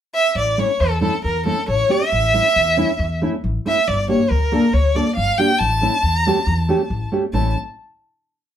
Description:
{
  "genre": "klezmer",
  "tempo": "138 BPM",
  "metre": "4/4",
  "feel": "straight",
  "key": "unclear",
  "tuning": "A4 = 439 Hz",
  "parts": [
    { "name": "rich violin", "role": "melody", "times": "0.1-7.5 s", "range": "A4 to A5", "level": "-18 LUFS", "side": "equal", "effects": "none" },
    { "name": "upright bass", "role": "bass", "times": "0.4-7.5 s", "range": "G1 to E2", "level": "-21 LUFS", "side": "left 1 dB", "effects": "none" },
    { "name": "nylon-string guitar", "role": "accompaniment", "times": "0.6-7.5 s", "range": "A3 to A4", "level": "-20 LUFS", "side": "right 1 dB", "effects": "none" }
  ],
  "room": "moderate studio ambience, RT60 0.5 s",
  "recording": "band playing live in one room",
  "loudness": "-16 LUFS",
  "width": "side -10 dB against mid",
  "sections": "0.0-0.4 pickup bar; 0.4-7.3 A section; 7.3-8.6 final chord",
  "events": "none",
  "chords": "0.4 A; 3.9 Gm; 5.6 A"
}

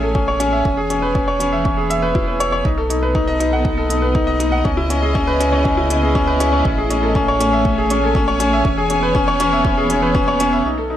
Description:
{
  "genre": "piano and strings electronica",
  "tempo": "120 BPM",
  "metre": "4/4",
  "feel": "straight",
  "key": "E major",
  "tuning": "A4 = 445 Hz",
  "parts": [
    { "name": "warm studio string section", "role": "sustained chords", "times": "0.0-11.0 s", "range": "A2 to G#5", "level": "-23 LUFS", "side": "equal", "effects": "sidechain pumping" },
    { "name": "bright upright piano", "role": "riff", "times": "0.0-11.0 s", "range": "C#4 to F#5", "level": "-17 LUFS", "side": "left 1 dB", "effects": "low-pass filter, tape echo" },
    { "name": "round analog bass", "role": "bass", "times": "0.0-11.0 s", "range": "E1 to C#2", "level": "-23 LUFS", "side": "equal", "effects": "sidechain pumping" },
    { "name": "electronic kick drum", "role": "drums", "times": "0.1-10.3 s", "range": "none", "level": "-21 LUFS", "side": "equal", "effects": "overdrive" },
    { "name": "electronic hi-hat", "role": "drums", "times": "0.4-10.5 s", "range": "none", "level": "-28 LUFS", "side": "right 2 dB", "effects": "overdrive, low-pass filter on hats, low-pass filter on room" }
  ],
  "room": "moderate echo chamber reverb, RT60 1.3 s, small room ambience",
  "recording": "none",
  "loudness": "-14 LUFS",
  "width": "side -11 dB against mid",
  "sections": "0.0-10.7 A section",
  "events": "fade-in on string section 0.0-10.7",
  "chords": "0.0 Amaj7; 0.7 E6; 2.7 B7; 4.7 C#m9; 6.7 Amaj7; 8.7 E6"
}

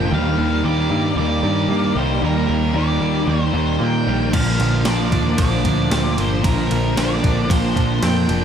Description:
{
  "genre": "rock, shoegaze and dream pop",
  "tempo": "114 BPM",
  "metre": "4/4",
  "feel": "straight",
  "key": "Bb major",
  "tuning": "A4 = 440 Hz",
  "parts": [
    { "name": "octave-fuzz lead guitar", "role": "melody", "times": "0.0-8.4 s", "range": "Bb4 to G5", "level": "-26 LUFS", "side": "left 1 dB", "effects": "distortion, digital delay" },
    { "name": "ethereal airy pad", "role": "sustained chords", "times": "0.0-8.4 s", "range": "D4 to Bb5", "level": "-30 LUFS", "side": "left 2 dB", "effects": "ensemble chorus, built-in reverb" },
    { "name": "twangy electric guitar", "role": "arpeggios", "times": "0.0-8.4 s", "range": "F3 to D4", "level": "-29 LUFS", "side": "right 8 dB", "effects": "lush chorus, digital delay" },
    { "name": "crunchy overdriven guitar", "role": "riff", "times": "0.0-8.4 s", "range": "Bb2 to Eb4", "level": "-22 LUFS", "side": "right 8 dB", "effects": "reverse reverb" },
    { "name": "thick fuzz guitar", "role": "riff", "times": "0.0-8.4 s", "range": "Bb2 to Eb4", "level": "-23 LUFS", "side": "left 10 dB", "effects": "distortion, wide subtle chorus" },
    { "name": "picked electric bass", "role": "bass", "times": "0.0-8.4 s", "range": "F1 to Bb2", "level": "-21 LUFS", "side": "equal", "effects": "none" },
    { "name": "gated 80s digital drum machine", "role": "drums", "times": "4.3-8.4 s", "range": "crash cymbal, kick drum, ride cymbal, snare drum", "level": "-22 LUFS", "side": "equal", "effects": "gated reverb, gated reverb snare" }
  ],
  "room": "light reverb",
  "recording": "none",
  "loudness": "-16 LUFS",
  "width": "side -8 dB against mid",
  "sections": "0.0-8.4 A section",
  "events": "none",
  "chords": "0.1 Ebmaj7; 4.3 Bbadd9"
}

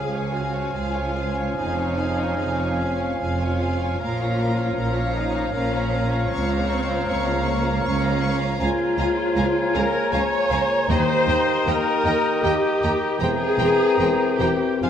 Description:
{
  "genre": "classical",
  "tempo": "69-80 BPM",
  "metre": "3/4",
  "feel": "rubato",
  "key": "unclear",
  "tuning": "A4 = 440 Hz",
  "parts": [
    { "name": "dark studio violin section", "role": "melody", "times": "0.0-14.9 s", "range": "F5 to Db6", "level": "-35 LUFS", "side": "left 2 dB", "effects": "none" },
    { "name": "clear oboe", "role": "second line", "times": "0.0-14.9 s", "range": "F5 to Ab5", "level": "-31 LUFS", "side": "equal", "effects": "none" },
    { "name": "mellow concert flute", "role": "second line", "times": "0.0-14.9 s", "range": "F5 to Bb5", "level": "-31 LUFS", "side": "left 1 dB", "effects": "none" },
    { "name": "warm clarinet", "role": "second line", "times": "0.0-14.9 s", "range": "C5 to Eb5", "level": "-31 LUFS", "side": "left 1 dB", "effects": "none" },
    { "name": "warm studio violin section", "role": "second line", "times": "0.0-14.9 s", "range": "Ab4 to Bb5", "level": "-32 LUFS", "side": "equal", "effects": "none" },
    { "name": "dark studio viola section", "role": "accompaniment", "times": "0.0-14.9 s", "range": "Bb3 to Db5", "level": "-25 LUFS", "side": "left 1 dB", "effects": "none" },
    { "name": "mellow bassoon", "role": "accompaniment", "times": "0.0-14.9 s", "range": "Eb3 to F3", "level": "-31 LUFS", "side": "right 2 dB", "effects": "none" },
    { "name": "dark French horn section", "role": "sustained chords", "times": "0.0-14.9 s", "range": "Bb3 to Bb4", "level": "-30 LUFS", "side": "left 6 dB", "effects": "none" },
    { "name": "rich studio double bass section", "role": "bass", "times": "0.0-14.9 s", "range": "E1 to Eb2", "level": "-29 LUFS", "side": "right 3 dB", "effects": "none" },
    { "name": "warm studio cello section", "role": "bass", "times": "0.0-14.9 s", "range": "Db2 to Bb2", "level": "-28 LUFS", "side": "right 1 dB", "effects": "none" },
    { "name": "timpani", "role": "percussion", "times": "10.9-12.0 s", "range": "Eb3", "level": "-29 LUFS", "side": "left 1 dB", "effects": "none" }
  ],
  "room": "wet scoring stage reverb, RT60 1.8 s",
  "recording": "none",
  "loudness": "-19 LUFS",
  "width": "side -8 dB against mid",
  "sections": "0.0-14.9 A section",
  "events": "none",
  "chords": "0.0 Db; 1.6 Db/F; 4.0 Bbm; 6.3 Bbm/Db; 8.6 Bbm7/Db; 10.9 Eb; 13.2 C7/E"
}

